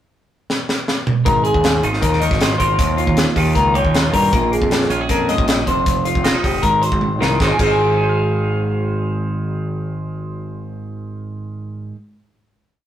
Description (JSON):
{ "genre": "math rock and midwest emo", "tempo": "157 BPM", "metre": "4/4", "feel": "straight", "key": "Ab major", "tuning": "A4 = 443 Hz", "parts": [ { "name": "crisp fusion drum kit", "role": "drums", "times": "0.5-7.7 s", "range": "crash cymbal, hi-hat, kick drum, snare drum, toms", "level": "-19 LUFS", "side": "equal", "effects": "none" }, { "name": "twelve-string electric guitar", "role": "accompaniment", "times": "1.3-12.0 s", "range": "Eb2 to F5", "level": "-22 LUFS", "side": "right 4 dB", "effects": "none" }, { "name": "electric guitar through a small old amp", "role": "arpeggios", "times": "1.3-12.0 s", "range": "F4 to Ab5", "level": "-19 LUFS", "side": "left 2 dB", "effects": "none" }, { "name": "growling picked electric bass", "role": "bass", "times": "1.3-11.9 s", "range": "F1 to G2", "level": "-21 LUFS", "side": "equal", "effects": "overdrive" } ], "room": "moderate stone room reverb, RT60 1.1 s", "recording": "rough rehearsal-room recording, tube saturation", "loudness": "-15 LUFS", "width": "side -11 dB against mid", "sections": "0.0-1.3 pickup bar; 1.3-7.4 A section; 7.4-10.5 final chord", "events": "drum fill 0.5-1.3, 7.0-7.4", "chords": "0.0 N.C.; 1.3 Ab69; 2.8 Eb9; 4.3 Bbm7; 5.7 Fsus2; 6.6 Ab69", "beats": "0.11 0.49 0.87 | 1.25 1.64 2.02 2.40 | 2.78 3.17 3.55 3.93 | 4.32 4.70 5.09 5.47 | 5.86 6.24 6.63 7.01 | 7.40 7.78 8.16 8.55 | 8.93 9.31 9.69 10.07" }